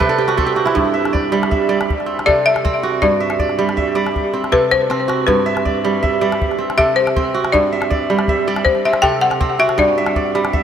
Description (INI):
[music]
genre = west african traditional, West African string and xylophone music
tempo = 106 BPM (dotted quarters)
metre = 12/8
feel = straight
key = unclear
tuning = A4 = 442 Hz
[part]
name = balafon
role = melody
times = 0.0-10.3 s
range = B4 to G5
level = -18 LUFS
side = left 4 dB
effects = analog delay
[part]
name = kora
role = arpeggios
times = 0.0-10.6 s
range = G2 to G5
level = -17 LUFS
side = right 4 dB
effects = analog delay
[part]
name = calabash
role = percussion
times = 0.0-10.6 s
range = none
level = -24 LUFS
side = left 1 dB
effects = none
[sound]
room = wet huge ambient reverb, RT60 6.1 s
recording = dreamy mix soaked in reverb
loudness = -14 LUFS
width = side -8 dB against mid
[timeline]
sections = 0.0-10.6 A section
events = kora fill 0.0-0.8; balafon solo 0.0-10.6; drum fill 4.7-5.3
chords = 0.0 N.C.; 0.8 G5; 1.9 C; 3.0 G5; 4.1 C; 5.3 G; 6.4 C; 7.5 G5; 8.7 C; 9.8 G5